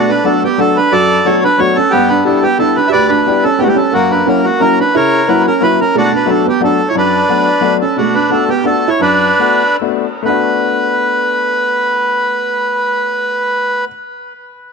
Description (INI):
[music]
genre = musette waltz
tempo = 125-181 BPM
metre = 3/4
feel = straight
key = B minor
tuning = A4 = 438 Hz
[part]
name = accordion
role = melody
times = 0.0-13.8 s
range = A#3 to E5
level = -13 LUFS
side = right 1 dB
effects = tape echo
[part]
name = felt-muted upright piano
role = second line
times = 0.0-13.9 s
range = A3 to G4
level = -16 LUFS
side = right 12 dB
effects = none
[part]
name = warm upright piano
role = accompaniment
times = 0.0-13.9 s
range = D2 to G4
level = -17 LUFS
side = left 15 dB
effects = none
[sound]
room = light reverb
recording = 1960s-style stereo with parts hard left and right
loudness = -10 LUFS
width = side -5 dB against mid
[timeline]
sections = 0.0-8.0 A section; 8.0-10.2 B section; 10.2-13.1 C section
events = slowing down 8.0-10.2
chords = 0.0 Bm7; 1.9 G6; 3.9 F#7; 5.9 Bm7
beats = 0.24 0.58 | 0.92 1.26 1.59 | 1.93 2.26 2.59 | 2.93 3.26 3.60 | 3.94 4.27 4.61 | 4.95 5.28 5.61 | 5.95 6.28 6.61 | 6.95 7.28 7.62 | 7.95 8.29 8.64 | 9.00 9.38 9.79 | 10.25 10.72 11.20 | 11.67 12.14 12.61